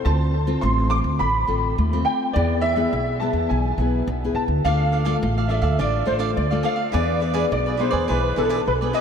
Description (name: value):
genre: samba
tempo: 104 BPM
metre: 4/4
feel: straight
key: unclear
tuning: A4 = 440 Hz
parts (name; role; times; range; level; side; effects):
- warm concert grand piano; melody; 0.0-9.0 s; A4 to D6; -24 LUFS; equal; ensemble chorus, ping-pong delay
- nylon-string guitar; accompaniment; 0.0-9.0 s; B2 to A4; -25 LUFS; left 5 dB; wide subtle chorus
- upright bass; bass; 0.1-8.9 s; A1 to E2; -23 LUFS; right 1 dB; none
- cavaquinho; accompaniment; 4.6-9.0 s; D4 to F5; -27 LUFS; right 7 dB; none
room: moderate huge ambient reverb, RT60 4.9 s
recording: dreamy mix soaked in reverb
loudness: -19 LUFS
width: side -7 dB against mid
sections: 0.0-9.0 A section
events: none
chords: 0.1 Dm7; 2.4 E; 4.7 Dm; 6.9 E7